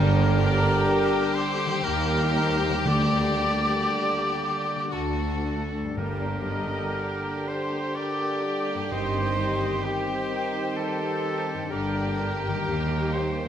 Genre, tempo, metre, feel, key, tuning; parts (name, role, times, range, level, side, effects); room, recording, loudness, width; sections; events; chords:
classical, slow romantic movement for symphony orchestra; 56-66 BPM; 3/4; rubato; G minor; A4 = 440 Hz
rich chamber violin section; melody; 0.0-13.5 s; F#4 to G4; -32 LUFS; left 3 dB
bright oboe; second line; 0.0-13.5 s; G4 to D5; -35 LUFS; right 2 dB
dark clarinet; second line; 0.0-13.5 s; F#4 to G4; -38 LUFS; left 3 dB
mellow hollow concert flute; second line; 0.0-13.5 s; G5 to D6; -33 LUFS; left 2 dB
rich chamber violin section; second line; 0.0-13.5 s; G3 to Eb4; -40 LUFS; left 2 dB
dark bassoon; accompaniment; 0.0-13.5 s; D3 to Eb3; -35 LUFS; right 1 dB
rich chamber viola section; accompaniment; 0.0-13.5 s; G4 to Eb5; -37 LUFS; right 3 dB
clear French horn section; sustained chords; 0.0-13.5 s; Bb3 to G4; -35 LUFS; left 4 dB
dark trombone section; sustained chords; 0.0-13.5 s; D3 to A3; -36 LUFS; right 4 dB
concert harp; arpeggios; 0.0-13.5 s; G2 to G4; -37 LUFS; left 11 dB
dark trumpet section; stabs; 0.0-13.5 s; G4 to D5; -34 LUFS; right 1 dB
rich chamber double bass section; bass; 0.0-13.4 s; G1 to Eb2; -30 LUFS; right 2 dB
warm chamber cello section; bass; 0.0-13.4 s; D2 to G2; -31 LUFS; right 2 dB
timpani; percussion; 0.0-10.3 s; G2 to D3; -31 LUFS; right 1 dB
moderate scoring stage reverb, RT60 2.1 s; close, detailed microphones; -23 LUFS; side -9 dB against mid
0.0-13.5 A section
0.0 Gm; 1.8 Eb; 2.9 Gm/D; 4.9 D; 6.0 Gm; 8.9 Cm/G; 11.7 Gm; 12.7 Eb